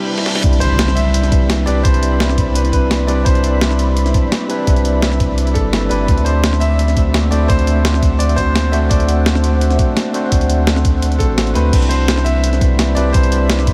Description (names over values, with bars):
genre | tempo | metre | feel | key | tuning
liquid drum and bass | 170 BPM | 4/4 | straight | C lydian | A4 = 440 Hz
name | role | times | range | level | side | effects
tine electric piano | accompaniment | 0.0-13.7 s | G3 to D5 | -22 LUFS | equal | delay
shimmering ambient pad | sustained chords | 0.0-13.7 s | C3 to B5 | -29 LUFS | equal | chorus, built-in reverb, sidechain pumping
reverse cymbal and impact | sound effects | 0.0-1.8 s | none | -28 LUFS | equal | none
breakbeat sampler-style drum kit | drums | 0.2-13.7 s | crash cymbal, hi-hat, snare drum | -23 LUFS | equal | high-pass filter on hats, high-pass filter on snare, high-pass filter on cymbals, high-pass filter on room
warm sub bass | bass | 0.4-13.7 s | G1 to D2 | -18 LUFS | equal | none
electronic kick drum | drums | 0.4-13.7 s | none | -18 LUFS | equal | none
bright baby grand piano | melody | 0.6-13.7 s | A4 to E5 | -25 LUFS | equal | delay
room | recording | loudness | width
moderate huge ambient reverb, RT60 7.9 s | dreamy mix soaked in reverb | -15 LUFS | mono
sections
0.4-13.7 A section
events
break 0.0-0.4; reverse cymbal 0.0-0.4; drum fill 0.2; drop 0.4-13.7; impact 0.4-1.8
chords
0.4 Cmaj9; 6.1 D7; 11.7 Cmaj9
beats
0.09 | 0.44 0.79 1.14 1.50 | 1.85 2.20 2.56 2.91 | 3.26 3.61 3.97 4.32 | 4.67 5.03 5.38 5.73 | 6.08 6.44 6.79 7.14 | 7.50 7.85 8.20 8.55 | 8.91 9.26 9.61 9.97 | 10.32 10.67 11.03 11.38 | 11.73 12.09 12.44 12.79 | 13.14 13.50